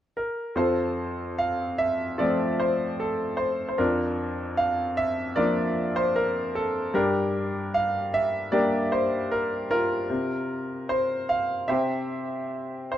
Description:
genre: classical, lyrical solo piano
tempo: 76 BPM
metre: 4/4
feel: rubato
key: F major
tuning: A4 = 441 Hz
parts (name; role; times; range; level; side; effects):
- bright concert grand piano; solo; 0.2-13.0 s; F2 to F5; -24 LUFS; equal; none
room: moderate studio ambience, RT60 0.5 s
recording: dark, warm production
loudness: -24 LUFS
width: side -11 dB against mid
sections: 0.6-13.0 A section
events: none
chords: 0.0 N.C.; 0.6 F; 3.8 Bb/F; 6.9 Gm; 10.1 F5/C; 11.7 C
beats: | 0.56 1.38 2.20 3.00 | 3.79 4.58 5.37 6.15 | 6.93 7.72 8.51 9.30 | 10.10 10.89 11.69 12.51

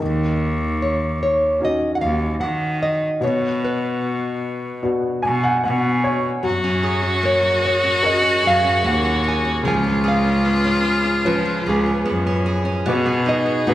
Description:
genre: acoustic folk-pop ballad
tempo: 75 BPM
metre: 4/4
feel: straight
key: unclear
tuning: A4 = 439 Hz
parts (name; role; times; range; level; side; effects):
- warm upright piano; accompaniment; 0.0-13.7 s; B2 to G#5; -24 LUFS; left 1 dB; none
- rich cello; bass; 0.0-13.7 s; C#2 to D#3; -22 LUFS; equal; none
- nylon-string guitar; melody; 0.8-13.7 s; G#4 to G#5; -22 LUFS; equal; none
- bright viola; second line; 6.4-13.7 s; E#4 to G#4; -21 LUFS; left 1 dB; none
- picked steel-string acoustic guitar; arpeggios; 6.6-13.7 s; E#3 to G#4; -25 LUFS; right 2 dB; none
room: wet recital hall reverb, RT60 1.4 s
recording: recorded in a church or concert hall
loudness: -17 LUFS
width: side -13 dB against mid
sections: 0.0-12.9 A section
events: none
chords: 0.0 D#m7; 3.2 Bm; 6.4 F#add9; 9.7 C#7; 12.9 B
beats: | 0.01 0.81 1.62 2.42 | 3.23 4.03 4.83 5.64 | 6.44 7.24 8.05 8.85 | 9.65 10.46 11.26 12.06 | 12.86 13.67

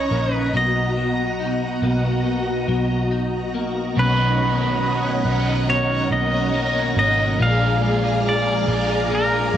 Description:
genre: dream pop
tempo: 70 BPM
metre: 4/4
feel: straight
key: unclear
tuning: A4 = 440 Hz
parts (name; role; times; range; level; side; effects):
- pedal steel guitar; melody; 0.0-9.6 s; A#4 to E#5; -23 LUFS; equal; cassette tape, tape echo
- string machine, violins; sustained chords; 0.0-9.6 s; B2 to A#5; -23 LUFS; equal; ensemble chorus
- clean electric guitar; arpeggios; 0.0-9.6 s; A#2 to D#4; -26 LUFS; left 6 dB; ensemble chorus, tape echo
- vintage muted picked electric bass; bass; 0.0-9.6 s; G#1 to B1; -24 LUFS; equal; none
- biting overdriven guitar; accompaniment; 4.0-9.6 s; A#2 to A#4; -26 LUFS; right 8 dB; harmonic tremolo, ensemble chorus
room: moderate studio ambience, RT60 0.5 s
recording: home recording on cassette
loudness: -18 LUFS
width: side -10 dB against mid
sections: 0.0-4.0 A section; 4.0-9.6 B section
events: none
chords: 0.0 C#m69; 0.5 Bmaj7; 4.0 Bmaj9; 7.4 A#7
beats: | 0.54 1.39 2.25 3.11 | 3.96 4.82 5.68 6.54 | 7.39 8.25 9.11

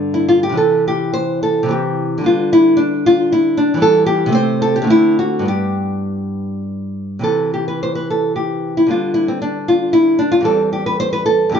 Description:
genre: classical, baroque-style dance for nylon-string guitar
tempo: 100-116 BPM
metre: 3/4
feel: rubato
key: G major from 3.8 s, C major from 7.3 s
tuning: A4 = 440 Hz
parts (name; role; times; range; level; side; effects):
- nylon-string guitar; solo; 0.0-11.6 s; E2 to C5; -14 LUFS; equal; none
room: moderate stone room reverb, RT60 1.0 s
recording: band playing live in one room, nothing above 7.6 kHz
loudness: -13 LUFS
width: side -7 dB against mid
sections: 0.0-7.3 A section; 7.3-11.6 A section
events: none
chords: 0.0 G; 0.6 C; 2.2 G/D; 3.8 Em; 4.4 Am/C; 4.9 D7; 5.5 G; 7.3 C; 8.9 G/D; 10.5 C/E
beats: 0.00 | 0.58 1.16 1.70 | 2.25 2.79 3.33 | 3.85 4.37 4.91 | 5.50 6.08 6.67 | 7.26 7.81 8.35 | 8.89 9.43 9.94 | 10.46 10.99 11.54

